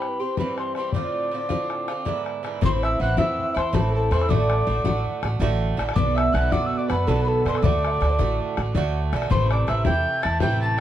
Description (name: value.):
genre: celtic folk, Celtic slip jig.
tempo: 108 BPM (dotted quarters).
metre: 9/8.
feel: straight.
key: A dorian.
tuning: A4 = 440 Hz.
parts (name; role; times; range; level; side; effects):
mellow hollow mid whistle; melody; 0.0-10.8 s; A5 to A6; -28 LUFS; left 1 dB; tape echo.
mellow hollow wooden flute; second line; 0.0-10.8 s; A4 to A5; -29 LUFS; left 4 dB; none.
Irish bouzouki; accompaniment; 0.0-10.8 s; G2 to G4; -27 LUFS; right 6 dB; none.
bodhran; percussion; 0.0-10.5 s; none; -26 LUFS; left 5 dB; none.
concert harp; second line; 2.6-10.8 s; A4 to A5; -30 LUFS; right 1 dB; none.
upright bass; bass; 2.6-10.8 s; A1 to F#2; -24 LUFS; right 1 dB; none.
room: light reverb.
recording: dark, warm production.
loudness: -20 LUFS.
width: side -12 dB against mid.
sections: 0.0-2.6 A section; 2.6-10.8 B section.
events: none.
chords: 0.0 C; 0.9 Dm7; 2.1 E7; 2.6 Am; 4.3 D/A; 6.0 Bm; 7.6 D; 9.3 Am.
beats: 0.38 | 0.94 1.50 2.06 | 2.62 3.18 3.74 | 4.29 4.85 5.41 | 5.97 6.53 7.08 | 7.64 8.20 8.75 | 9.31 9.87 10.42.